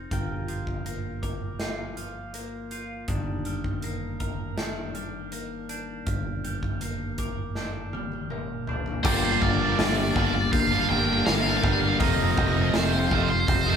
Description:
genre	post-rock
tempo	81 BPM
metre	4/4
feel	straight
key	G minor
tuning	A4 = 440 Hz
part	pedal steel guitar	sustained chords	0.0-13.8 s	Eb3 to Bb5	-40 LUFS	left 4 dB	none
part	glockenspiel with soft plastic mallets	arpeggios	0.0-13.8 s	D6 to G6	-37 LUFS	right 8 dB	none
part	twelve-string electric guitar	arpeggios	0.0-13.8 s	G2 to Bb4	-36 LUFS	left 4 dB	none
part	fingered electric bass	bass	0.0-13.8 s	F1 to G1	-31 LUFS	equal	none
part	big rock drum kit	drums	0.1-13.7 s	crash cymbal, hi-hat, kick drum, snare drum, toms	-29 LUFS	right 1 dB	none
part	cranked stack guitar	melody	9.0-13.8 s	C5 to G5	-27 LUFS	right 1 dB	overdrive, phaser
part	overdriven electric guitar	riff	9.0-13.8 s	F2 to Eb4	-28 LUFS	right 7 dB	none
part	thick fuzz guitar	riff	9.1-13.8 s	F2 to D4	-28 LUFS	left 7 dB	distortion
room	wet large studio reverb, RT60 1.4 s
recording	band playing live in one room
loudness	-24 LUFS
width	side -7 dB against mid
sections	0.0-9.0 A section; 9.0-13.8 B section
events	drum fill 7.6-9.0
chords	0.1 Gm7; 3.1 Ebmaj7/G; 9.0 Gm7; 12.0 F7sus4

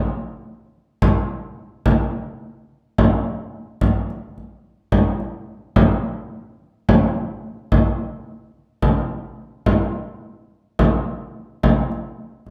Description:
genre	contemporary instrumental, contemporary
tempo	215 BPM (eighths)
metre	7/8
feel	straight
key	none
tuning	none
part	frame drum	percussion	1.0-12.5 s	none	-20 LUFS	equal	none
room	light reverb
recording	close, detailed microphones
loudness	-21 LUFS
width	mono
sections	0.0-12.5 A section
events	none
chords	none

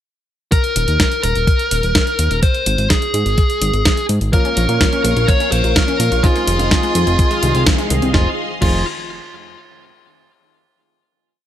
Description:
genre	italo disco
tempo	126 BPM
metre	4/4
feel	straight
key	F minor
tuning	A4 = 440 Hz
part	smooth overdriven lead guitar	melody	0.5-8.8 s	F4 to Db5	-19 LUFS	left 1 dB	ping-pong delay
part	clean 12-bit digital drum machine	drums	0.5-8.7 s	crash cymbal, hi-hat, snare drum	-20 LUFS	equal	none
part	electronic kick drum	drums	0.5-8.7 s	none	-16 LUFS	equal	none
part	fat analog bass	bass	0.8-8.8 s	Eb1 to Bb2	-18 LUFS	equal	none
part	string machine, full ensemble	sustained chords	4.3-8.4 s	Ab4 to Db6	-23 LUFS	equal	ensemble chorus
part	wide unison pluck	arpeggios	4.3-8.8 s	Eb3 to F4	-26 LUFS	left 3 dB	cassette tape, tape echo
part	dark grand piano	stabs	4.3-8.8 s	Bb3 to Bb4	-26 LUFS	right 1 dB	none
room	light reverb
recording	none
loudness	-13 LUFS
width	side -11 dB against mid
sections	0.5-8.1 verse; 8.1-10.0 final chord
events	band accent 7.7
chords	0.5 Eb5; 2.4 Ab; 4.3 Bbm; 6.2 Fm7

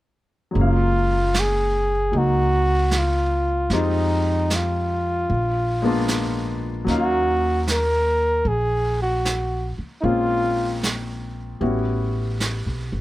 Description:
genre	jazz ballad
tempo	76 BPM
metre	4/4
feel	swing 69% on 8ths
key	F# major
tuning	A4 = 440 Hz
part	warm grand piano	accompaniment	0.5-13.0 s	F#3 to E#5	-26 LUFS	left 2 dB	none
part	mellow flugelhorn	melody	0.6-10.8 s	Eb4 to A#4	-22 LUFS	equal	none
part	upright bass	bass	0.6-13.0 s	F#1 to F2	-24 LUFS	equal	none
part	vintage brush drum kit	drums	0.6-13.0 s	brushed snare drum, hi-hat, snare drum	-30 LUFS	right 3 dB	none
room	little or no reverb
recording	close, detailed microphones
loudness	-19 LUFS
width	side -16 dB against mid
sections	0.5-13.0 A section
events	none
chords	0.5 F#maj7; 3.7 Fm7; 5.3 A#7b9; 6.9 D#m7; 10.0 A#m7; 11.6 A13

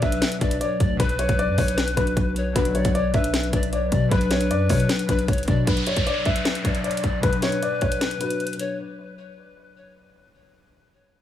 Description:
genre	hip hop, trap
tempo	154 BPM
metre	4/4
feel	half-time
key	B minor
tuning	A4 = 440 Hz
part	dark baby grand piano	melody	0.0-8.8 s	B4 to E5	-28 LUFS	left 2 dB	low-pass filter, digital delay
part	bright polished pan flute	second line	0.0-8.8 s	B4 to D5	-30 LUFS	left 5 dB	digital delay
part	glassy digital keys	accompaniment	0.0-8.8 s	B2 to C#5	-29 LUFS	left 1 dB	chorus, low-pass filter
part	warbly tape-like pad	sustained chords	0.0-8.8 s	F#3 to B4	-32 LUFS	left 1 dB	chorus, built-in reverb, low-pass filter
part	long sustained 808-style bass	bass	0.0-5.7 s	B1 to B2	-25 LUFS	left 1 dB	none
part	trap drum kit	drums	0.0-8.7 s	hi-hat, kick drum, snare drum	-24 LUFS	equal	none
part	chorused polysynth	stabs	2.6-2.9 s	B2 to F#3	-29 LUFS	left 3 dB	none
part	downlifter	sound effects	5.7-8.8 s	none	-30 LUFS	equal	none
room	digital ambience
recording	studio ambience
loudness	-20 LUFS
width	side -11 dB against mid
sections	0.0-5.7 A section; 5.7-8.8 B section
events	filter sweep 5.7-8.8; break 8.0-8.8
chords	0.0 Bm

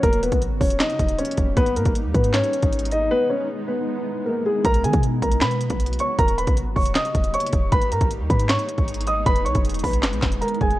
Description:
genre	hip hop, trap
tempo	156 BPM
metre	4/4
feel	half-time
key	G# minor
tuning	A4 = 440 Hz
part	dark grand piano	melody	0.0-10.8 s	G#3 to D#6	-23 LUFS	equal	ping-pong delay
part	granular cloud pad	sustained chords	0.0-10.8 s	C#3 to G#4	-30 LUFS	equal	built-in reverb
part	clean 808-style bass	bass	0.0-10.8 s	D#1 to D#3	-24 LUFS	equal	none
part	trap drum kit	drums	0.0-10.8 s	handclaps, hi-hat, kick drum, snare drum	-22 LUFS	equal	none
room	little or no reverb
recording	worn, warbling old tape, cassette tape, warbly pitch drift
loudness	-19 LUFS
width	side -16 dB against mid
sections	0.0-4.6 A section; 4.6-10.8 B section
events	break 3.1-4.6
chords	0.0 D#; 1.6 G#m; 3.1 Emaj7; 4.6 Bsus2; 6.2 D#; 7.7 G#m; 9.3 Emaj7

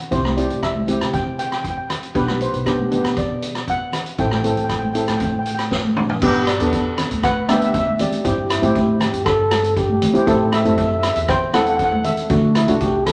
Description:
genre	calypso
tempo	118 BPM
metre	4/4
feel	straight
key	G major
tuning	A4 = 439 Hz
part	steel pan	melody	0.1-12.8 s	F#4 to G5	-25 LUFS	equal	none
part	steel pan	accompaniment	0.1-13.1 s	A3 to A4	-24 LUFS	equal	none
part	upright bass	bass	0.1-13.1 s	A1 to C3	-26 LUFS	equal	none
part	street-band drum kit	drums	0.1-13.1 s	crash cymbal, hi-hat, kick drum, rim click, snare drum, toms	-26 LUFS	equal	none
part	congas	percussion	0.2-13.1 s	none	-28 LUFS	equal	none
part	dark trombone	second line	8.5-13.1 s	E4 to A4	-23 LUFS	equal	none
room	wet large studio reverb, RT60 1.4 s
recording	lossy compression artefacts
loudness	-19 LUFS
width	mono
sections	0.0-6.2 A section; 6.2-13.1 B section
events	drum fill 5.7-6.2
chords	0.1 C; 2.1 G/B; 4.2 Am; 6.2 G; 8.2 Cadd9/G; 10.3 Am; 12.3 Dadd9

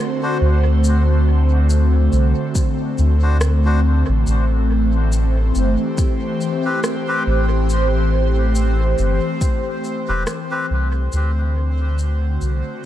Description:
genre	ambient dub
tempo	70 BPM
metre	4/4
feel	swing 57% on 16ths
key	A dorian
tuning	A4 = 439 Hz
part	airy breathy pad	sustained chords	0.0-12.9 s	D3 to C5	-22 LUFS	equal	chorus, phaser
part	melodica	stabs	0.2-10.7 s	C4 to C5	-28 LUFS	left 2 dB	dub echo
part	soft dub sub bass	bass	0.4-12.6 s	E1 to D2	-16 LUFS	equal	none
part	electronic shaker and rim click	drums	0.8-12.6 s	none	-28 LUFS	equal	overdrive, studio reverb, dub echo
part	electronic kick drum	drums	2.6-9.6 s	none	-18 LUFS	equal	studio reverb
part	bubbling stepped-filter texture	texture	4.8-12.9 s	C4 to C5	-30 LUFS	left 2 dB	chorus, built-in reverb
room	light reverb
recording	none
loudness	-15 LUFS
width	side -12 dB against mid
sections	0.0-12.9 A section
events	fade-out 8.8-12.9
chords	0.0 D7; 4.3 Am7; 11.1 D7

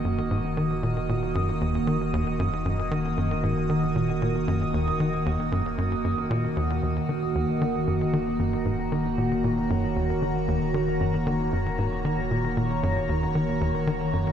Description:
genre	ambient, sequencer-driven space music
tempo	115 BPM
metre	4/4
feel	straight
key	Eb minor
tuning	A4 = 440 Hz
part	evolving wavetable pad	sustained chords	0.0-14.3 s	Eb3 to Eb6	-26 LUFS	right 1 dB	chorus, built-in reverb, phaser, shimmer reverb
part	tight sequencer bass	riff	0.0-14.3 s	Eb2 to Eb3	-27 LUFS	equal	ping-pong delay
part	warm sub bass	bass	0.0-14.3 s	Eb1	-36 LUFS	equal	none
room	wet cathedral reverb, RT60 6.1 s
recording	dreamy mix soaked in reverb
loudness	-23 LUFS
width	side -9 dB against mid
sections	0.0-14.3 A section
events	none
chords	0.0 Ebm

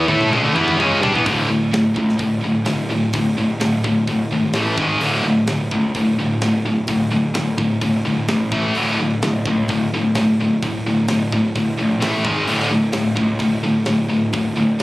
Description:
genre	heavy metal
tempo	128 BPM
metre	4/4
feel	straight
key	unclear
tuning	A4 = 438 Hz
part	heavy high-gain guitar	riff	0.0-14.8 s	D2 to A4	-25 LUFS	right 4 dB	distortion
part	tight distorted guitar	riff	0.0-14.8 s	D2 to A4	-18 LUFS	left 1 dB	distortion
part	fuzz picked electric bass	bass	0.0-14.8 s	D1 to A2	-22 LUFS	right 1 dB	overdrive
part	tight metal drum kit	drums	0.1-14.8 s	hi-hat, kick drum, snare drum, toms	-28 LUFS	equal	none
room	little or no reverb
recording	recorded on a phone in the room, club reverb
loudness	-16 LUFS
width	side -18 dB against mid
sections	0.0-1.3 A section; 1.3-14.8 B section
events	drum fill 0.0-1.3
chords	0.1 C#5; 1.3 D5; 4.5 A5; 4.8 G#5; 5.0 D5; 8.5 A5; 8.8 D5; 12.0 A5; 12.3 G#5; 12.5 D5

